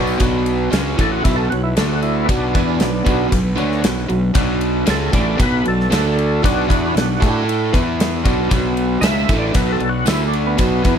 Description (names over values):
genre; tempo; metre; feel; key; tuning
classic rock; 115 BPM; 4/4; straight; B minor; A4 = 441 Hz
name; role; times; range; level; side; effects
warm grand piano; accompaniment; 0.0-11.0 s; D4 to E5; -31 LUFS; left 11 dB; none
overdriven electric guitar; riff; 0.0-11.0 s; A2 to A4; -19 LUFS; right 1 dB; none
fuzz fingered electric bass; bass; 0.0-11.0 s; A1 to A2; -22 LUFS; equal; overdrive
tambourine; percussion; 0.1-0.2, 9.0-10.2 s; none; -36 LUFS; right 16 dB; none
picked plugged-in steel-string acoustic guitar; accompaniment; 0.2-11.0 s; B2 to E5; -30 LUFS; right 10 dB; none
gated 80s drum kit; drums; 0.2-11.0 s; kick drum, ride cymbal, snare drum; -19 LUFS; equal; none
overdriven tonewheel organ; melody; 1.0-10.9 s; B3 to E5; -22 LUFS; equal; slow rotary speaker, chorus vibrato
room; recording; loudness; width
little or no reverb; none; -15 LUFS; side -8 dB against mid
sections
0.2-11.0 A section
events
tonewheel organ solo 0.2-11.0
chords
0.2 Bm; 1.8 D5; 2.3 Bm; 5.9 D5; 6.4 Bm; 7.2 A5; 7.7 E5; 8.3 Bm; 10.1 D5